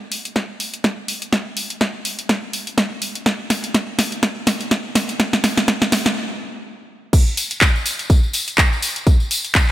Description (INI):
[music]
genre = house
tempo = 124 BPM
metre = 4/4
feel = swing 56% on 16ths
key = none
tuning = none
[part]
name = house drum kit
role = drums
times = 0.1-9.7 s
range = crash cymbal, handclaps, hi-hat, snare drum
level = -18 LUFS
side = equal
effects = small room ambience
[part]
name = electronic kick drum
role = drums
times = 0.4-9.7 s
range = none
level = -16 LUFS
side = equal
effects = high-pass filter on kick, small room ambience, high-pass filter on room
[part]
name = tambourine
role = percussion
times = 7.1-9.7 s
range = none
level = -25 LUFS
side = left 2 dB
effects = none
[sound]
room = moderate lush hall reverb, RT60 2.2 s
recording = none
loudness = -17 LUFS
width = side -14 dB against mid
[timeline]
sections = 0.0-7.1 A section; 7.1-9.7 B section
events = build-up 0.0-7.1; drum fill 0.0-6.2; stop 6.2-7.1; drop 7.1-9.7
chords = none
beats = 0.36 0.84 | 1.32 1.81 2.29 2.78 | 3.26 3.74 4.23 4.71 | 5.20 5.68 6.16 6.65 | 7.13 7.62 8.10 8.58 | 9.07 9.55